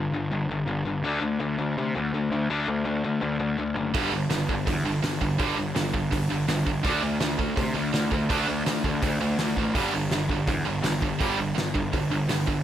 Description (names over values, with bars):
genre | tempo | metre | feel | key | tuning
punk rock | 165 BPM | 4/4 | straight | unclear | A4 = 440 Hz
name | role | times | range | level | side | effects
distorted electric guitar | riff | 0.0-12.6 s | G2 to D4 | -28 LUFS | left 4 dB | distortion
fuzz picked electric bass | bass | 0.0-12.6 s | F#1 to C3 | -30 LUFS | right 1 dB | overdrive
tight distorted guitar | riff | 3.9-12.6 s | G2 to D4 | -29 LUFS | right 10 dB | distortion
loose indie drum kit | drums | 3.9-12.6 s | hi-hat, kick drum, snare drum | -29 LUFS | equal | none
room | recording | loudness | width
light reverb | none | -24 LUFS | side -11 dB against mid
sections
0.0-12.6 A section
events
none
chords
0.0 G5; 1.0 D5; 3.9 G5; 6.8 D5; 9.7 G5